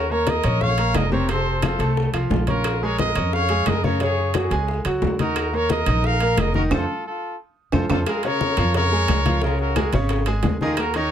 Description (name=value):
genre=latin, salsa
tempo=177 BPM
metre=4/4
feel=straight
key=Bb minor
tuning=A4 = 440 Hz
part: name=bright trumpet section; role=melody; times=0.0-11.1 s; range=Db4 to F5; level=-24 LUFS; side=equal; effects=none
part: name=bright concert grand piano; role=accompaniment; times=0.0-11.1 s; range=C3 to Eb6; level=-25 LUFS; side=right 1 dB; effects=none
part: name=upright bass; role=bass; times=0.0-11.1 s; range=F1 to Gb2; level=-23 LUFS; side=equal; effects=none
part: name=congas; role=percussion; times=0.1-11.1 s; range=none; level=-26 LUFS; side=left 4 dB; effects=none
part: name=bongos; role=percussion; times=0.3-11.1 s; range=none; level=-30 LUFS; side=left 4 dB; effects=none
part: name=timbales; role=percussion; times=0.3-11.1 s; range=none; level=-29 LUFS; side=right 6 dB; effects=none
part: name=claves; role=percussion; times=0.4-10.9 s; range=none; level=-36 LUFS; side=left 2 dB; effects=none
room=light reverb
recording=close, detailed microphones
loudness=-18 LUFS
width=side -9 dB against mid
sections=0.0-8.1 A section; 8.1-11.1 B section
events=band accent 6.7-8.1; drum fill 7.1-8.1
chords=0.0 Eb7(no3); 1.3 F; 2.6 Bbm7; 4.0 Gbsus2; 5.4 Eb5; 6.7 F; 8.1 Bbm7; 9.4 Db6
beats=0.27 0.61 0.95 | 1.29 1.63 1.97 2.31 | 2.65 2.99 3.33 3.67 | 4.00 4.34 4.68 5.02 | 5.36 5.70 6.04 6.38 | 6.71 7.05 7.39 7.73 | 8.07 8.41 8.75 9.08 | 9.42 9.76 10.10 10.44 | 10.78